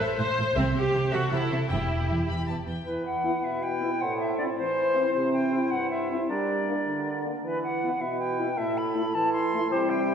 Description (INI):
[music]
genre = cinematic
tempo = 105 BPM (dotted quarters)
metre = 6/8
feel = straight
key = E minor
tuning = A4 = 445 Hz
[part]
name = rich symphonic violin section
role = melody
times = 0.0-2.9 s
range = C5 to B5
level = -38 LUFS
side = left 2 dB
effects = none
[part]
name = clear symphonic violin section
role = second line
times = 0.0-2.6 s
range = G4 to C5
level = -35 LUFS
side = left 5 dB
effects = none
[part]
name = rich symphonic viola section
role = accompaniment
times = 0.0-2.3 s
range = C4 to C5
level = -27 LUFS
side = equal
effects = none
[part]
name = rich symphonic cello section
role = bass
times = 0.0-2.7 s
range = E2 to C3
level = -30 LUFS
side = right 2 dB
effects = none
[part]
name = clear symphonic double bass section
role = bass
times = 0.6-1.9 s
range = E1 to C2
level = -32 LUFS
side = right 2 dB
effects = none
[part]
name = dark cor anglais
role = second line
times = 2.9-10.1 s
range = G4 to C5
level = -34 LUFS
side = right 1 dB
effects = none
[part]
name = mellow clarinet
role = second line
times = 2.9-10.1 s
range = D4 to E4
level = -34 LUFS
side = left 4 dB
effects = none
[part]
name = silver concert flute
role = second line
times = 2.9-10.1 s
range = B4 to C6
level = -28 LUFS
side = left 1 dB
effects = none
[part]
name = clear trombone section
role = sustained chords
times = 2.9-10.1 s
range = G2 to G3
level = -30 LUFS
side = right 3 dB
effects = none
[part]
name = mellow French horn section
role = sustained chords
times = 3.2-10.1 s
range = G3 to E4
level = -33 LUFS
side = left 2 dB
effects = none
[sound]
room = wet concert hall reverb, RT60 2.0 s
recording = heard from further back in the room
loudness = -24 LUFS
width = side -7 dB against mid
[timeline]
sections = 0.0-2.9 A section; 2.9-10.1 A section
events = none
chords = 0.0 Am; 0.6 C; 1.7 Em; 4.0 Am; 5.1 C; 6.3 Gm; 7.4 Em; 8.6 Am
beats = | 0.56 1.13 | 1.71 2.28 | 2.86 3.43 | 4.00 4.57 | 5.13 5.71 | 6.28 6.86 | 7.43 8.01 | 8.57 9.14 | 9.71